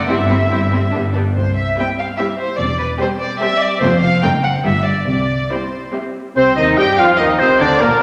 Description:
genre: quick classical-period movement for symphony orchestra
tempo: 145 BPM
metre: 3/4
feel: straight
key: C major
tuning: A4 = 439 Hz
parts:
  - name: rich chamber violin section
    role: second line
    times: 0.0-8.0 s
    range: Bb3 to G5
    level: -22 LUFS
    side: equal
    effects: none
  - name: dark chamber cello section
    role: bass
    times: 0.0-7.9 s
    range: C2 to G3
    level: -23 LUFS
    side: equal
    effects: none
  - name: rich chamber double bass section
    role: bass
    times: 0.0-7.9 s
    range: E1 to G2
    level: -26 LUFS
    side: equal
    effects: none
  - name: rich chamber violin section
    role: melody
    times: 0.1-8.0 s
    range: D4 to G5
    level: -25 LUFS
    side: equal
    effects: none
  - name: rich chamber viola section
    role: accompaniment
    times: 0.1-7.9 s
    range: G3 to G4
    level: -25 LUFS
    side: equal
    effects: none
  - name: dark clarinet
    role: second line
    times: 6.4-8.0 s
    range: Bb3 to G4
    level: -26 LUFS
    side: equal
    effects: none
  - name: silver concert flute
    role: second line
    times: 6.4-8.0 s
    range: Bb4 to G5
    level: -25 LUFS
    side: equal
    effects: none
  - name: warm oboe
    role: second line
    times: 6.4-8.0 s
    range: Bb4 to G5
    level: -18 LUFS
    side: equal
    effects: none
  - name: dark bassoon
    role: accompaniment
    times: 6.4-8.0 s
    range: Bb2 to G3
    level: -22 LUFS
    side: equal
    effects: none
  - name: clear French horn section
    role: sustained chords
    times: 6.4-8.0 s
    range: Bb3 to G4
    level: -22 LUFS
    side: equal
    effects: none
room: wet scoring stage reverb, RT60 1.7 s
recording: none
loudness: -16 LUFS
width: mono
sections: 0.0-6.4 A section; 6.4-8.0 A section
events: none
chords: 0.1 C/G; 0.9 G; 1.4 C; 2.6 C/E; 3.8 F; 4.2 F#dim7; 4.6 G7; 5.1 C; 6.4 Cm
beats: | 0.09 0.52 0.94 | 1.36 1.78 2.19 | 2.60 3.01 3.42 | 3.82 4.23 4.65 | 5.08 5.50 5.93 | 6.36 6.78 7.19 | 7.60 8.01

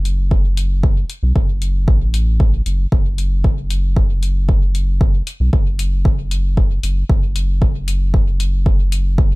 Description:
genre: dub techno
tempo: 115 BPM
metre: 4/4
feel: straight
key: F# minor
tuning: A4 = 441 Hz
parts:
  - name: pure sine sub bass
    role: bass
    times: 0.0-9.4 s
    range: F#1 to B1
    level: -17 LUFS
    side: equal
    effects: sidechain pumping
  - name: electronic hi-hat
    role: drums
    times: 0.1-9.0 s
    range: none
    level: -29 LUFS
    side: left 5 dB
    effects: none
  - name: electronic kick drum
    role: drums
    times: 0.3-9.3 s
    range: none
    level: -15 LUFS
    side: equal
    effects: none
room: little or no reverb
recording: none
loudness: -14 LUFS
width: side -23 dB against mid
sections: 0.0-9.4 A section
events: none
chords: none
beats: 0.31 | 0.83 1.36 1.88 2.40 | 2.92 3.44 3.96 4.49 | 5.01 5.53 6.05 6.57 | 7.10 7.62 8.14 8.66 | 9.18

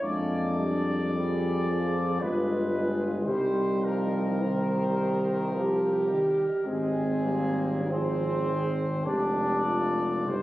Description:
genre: classical, hymn-like piece for brass band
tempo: 47-59 BPM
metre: 3/4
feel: rubato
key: C minor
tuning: A4 = 441 Hz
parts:
  - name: warm trumpet section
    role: melody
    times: 0.0-10.4 s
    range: Ab4 to D5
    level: -34 LUFS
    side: left 2 dB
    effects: none
  - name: mellow French horn section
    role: second line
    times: 0.0-10.4 s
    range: C4 to C5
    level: -30 LUFS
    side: right 1 dB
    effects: none
  - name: brilliant trombone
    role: accompaniment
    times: 0.0-10.4 s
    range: Eb3 to D4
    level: -34 LUFS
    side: equal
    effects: none
  - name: warm euphonium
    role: accompaniment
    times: 0.0-10.4 s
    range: Eb3 to Ab3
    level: -33 LUFS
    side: left 1 dB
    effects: none
  - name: warm tuba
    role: bass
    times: 0.0-10.4 s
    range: F1 to F2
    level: -30 LUFS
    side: equal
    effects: none
room: moderate concert hall reverb, RT60 2.3 s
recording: recorded on a phone in the room, club reverb, compression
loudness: -25 LUFS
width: side -16 dB against mid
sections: 0.0-10.4 A section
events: none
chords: 0.0 Ddim/F; 2.2 G7b9; 3.3 Cm; 6.7 Abmaj7; 9.1 Ddim/F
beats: | 0.02 1.16 2.22 | 3.25 4.42 5.54 | 6.66 7.89 9.06 | 10.27

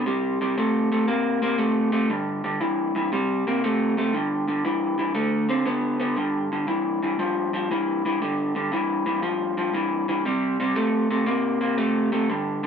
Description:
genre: blues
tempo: 118 BPM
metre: 4/4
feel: swing 68% on 8ths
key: unclear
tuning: A4 = 440 Hz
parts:
  - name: electric guitar through a small old amp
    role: solo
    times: 0.0-12.7 s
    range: G2 to C4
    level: -22 LUFS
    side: equal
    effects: none
room: moderate stone room reverb, RT60 1.1 s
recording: band playing live in one room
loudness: -22 LUFS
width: side -7 dB against mid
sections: 0.0-6.2 A section; 6.2-12.7 B section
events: none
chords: 0.1 C5; 2.1 G5; 3.1 C5; 4.1 G5; 5.2 D5; 6.2 G5; 10.3 C5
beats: | 0.07 0.58 1.09 1.60 | 2.11 2.62 3.13 3.64 | 4.15 4.66 5.16 5.67 | 6.18 6.69 7.20 7.71 | 8.22 8.73 9.24 9.75 | 10.26 10.77 11.28 11.79 | 12.29

